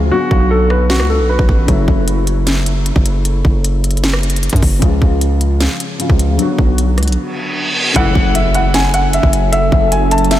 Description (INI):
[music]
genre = hip hop, trap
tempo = 153 BPM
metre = 4/4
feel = half-time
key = F# minor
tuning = A4 = 441 Hz
[part]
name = dark grand piano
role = accompaniment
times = 0.0-10.4 s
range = C#3 to F#4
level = -20 LUFS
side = left 3 dB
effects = ensemble chorus, low-pass filter
[part]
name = distorted 808-style bass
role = bass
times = 0.0-10.4 s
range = F#1 to F#2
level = -15 LUFS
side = equal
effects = distortion
[part]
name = dark grand piano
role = melody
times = 0.1-1.7, 8.0-10.4 s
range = F#4 to A5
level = -17 LUFS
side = equal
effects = low-pass filter, analog delay
[part]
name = trap drum kit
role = drums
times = 0.3-10.4 s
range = hi-hat, kick drum, rim click, snare drum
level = -16 LUFS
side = equal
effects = none
[part]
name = reverse cymbal and impact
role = sound effects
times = 7.3-9.5 s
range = none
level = -20 LUFS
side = right 1 dB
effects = none
[part]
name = deep dark ambient pad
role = sustained chords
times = 8.9-10.4 s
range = F#3 to E5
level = -19 LUFS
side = right 1 dB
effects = chorus, built-in reverb
[part]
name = clear brass ensemble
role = stabs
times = 8.0-8.2 s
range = C#2 to E3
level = -28 LUFS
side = right 3 dB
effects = analog delay
[sound]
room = light reverb, studio reverb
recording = none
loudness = -11 LUFS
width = side -13 dB against mid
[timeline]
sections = 0.0-8.0 A section; 8.0-10.4 B section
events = break 0.0-1.7, 7.2-8.0; reverse cymbal 7.3-8.0; impact 8.0-9.5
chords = 0.1 Bm; 1.7 F#m7; 4.8 C#; 6.4 Bm; 8.0 F#m7